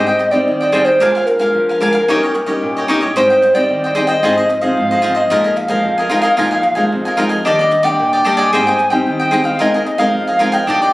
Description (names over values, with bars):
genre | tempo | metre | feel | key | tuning
samba | 112 BPM | 4/4 | straight | unclear | A4 = 441 Hz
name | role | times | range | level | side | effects
pure sine lead | melody | 0.0-10.9 s | Bb4 to Ab5 | -14 LUFS | equal | chorus, plate reverb
cavaquinho | accompaniment | 0.0-10.9 s | D4 to Ab5 | -18 LUFS | equal | none
nylon-string guitar | accompaniment | 0.0-10.9 s | F2 to F4 | -19 LUFS | left 1 dB | none
room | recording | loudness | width
wet large studio reverb, RT60 0.8 s | recorded on a phone in the room, club reverb, compression | -12 LUFS | side -19 dB against mid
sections
0.0-10.9 A section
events
none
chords
0.0 Abmaj7; 1.0 Bb7; 2.1 Eb7/Bb; 3.2 Abmaj7; 4.2 Fm7/Ab; 5.3 Bb7sus4; 7.4 Ebmaj7; 8.5 Abmaj7; 9.6 Bb9sus4